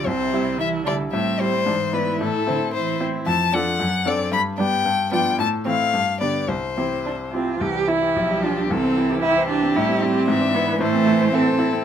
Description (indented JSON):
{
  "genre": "quick classical-period movement for piano quartet",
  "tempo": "112 BPM",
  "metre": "2/4",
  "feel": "rubato",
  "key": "C major",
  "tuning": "A4 = 439 Hz",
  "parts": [
    { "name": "rich violin", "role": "melody", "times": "0.0-11.8 s", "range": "G4 to B5", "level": "-23 LUFS", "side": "left 6 dB", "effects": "none" },
    { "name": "rich cello", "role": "second line", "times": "0.0-11.6 s", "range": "C3 to G4", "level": "-23 LUFS", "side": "right 3 dB", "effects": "none" },
    { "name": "bright grand piano", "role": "accompaniment", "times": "0.0-11.8 s", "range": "B1 to E5", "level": "-24 LUFS", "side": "left 1 dB", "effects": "none" },
    { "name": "warm viola", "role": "accompaniment", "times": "0.0-11.8 s", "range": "E3 to E4", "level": "-28 LUFS", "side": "right 4 dB", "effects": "none" }
  ],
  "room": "light reverb",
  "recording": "close, detailed microphones",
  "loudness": "-18 LUFS",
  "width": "side -9 dB against mid",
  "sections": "0.0-7.6 A section; 7.6-11.8 A section",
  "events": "none",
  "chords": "0.1 C; 1.1 Am7; 1.7 E7/G#; 2.2 Am; 3.3 Dm/F; 3.8 D7/F#; 4.3 G; 4.8 G7; 5.4 Am; 5.9 G7; 6.5 C; 8.2 G7/B; 8.7 C; 9.8 Am7; 10.3 E7/G#; 10.8 Am"
}